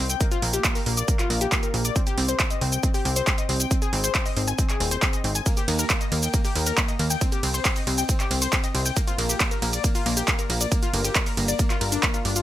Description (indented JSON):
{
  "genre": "uplifting trance",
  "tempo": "137 BPM",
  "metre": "4/4",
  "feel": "straight",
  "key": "C minor",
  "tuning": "A4 = 440 Hz",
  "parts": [
    { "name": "analog pluck", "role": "arpeggios", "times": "0.0-12.4 s", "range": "Bb3 to Ab5", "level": "-27 LUFS", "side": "left 3 dB", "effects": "chorus, sidechain pumping, digital delay" },
    { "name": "plucky analog bass", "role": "bass", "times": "0.0-12.4 s", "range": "Eb1 to Eb2", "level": "-26 LUFS", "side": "equal", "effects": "sidechain pumping" },
    { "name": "punchy analog drum machine", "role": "drums", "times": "0.1-12.4 s", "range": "handclaps, hi-hat, ride cymbal, shaker", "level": "-25 LUFS", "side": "right 1 dB", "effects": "sidechain pumping on hats, sidechain pumping on perc, sidechain pumping on cymbals" },
    { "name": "electronic kick drum", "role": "drums", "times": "0.2-12.1 s", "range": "none", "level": "-24 LUFS", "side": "equal", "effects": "none" }
  ],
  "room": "light reverb, digital ambience",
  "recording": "none",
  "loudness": "-21 LUFS",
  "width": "side -13 dB against mid",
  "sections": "0.0-12.4 A section",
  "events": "none",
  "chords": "0.2 Bb6; 2.0 C5; 3.7 Ab; 5.5 Eb; 7.2 C5; 9.0 Bb6; 10.7 Gm7"
}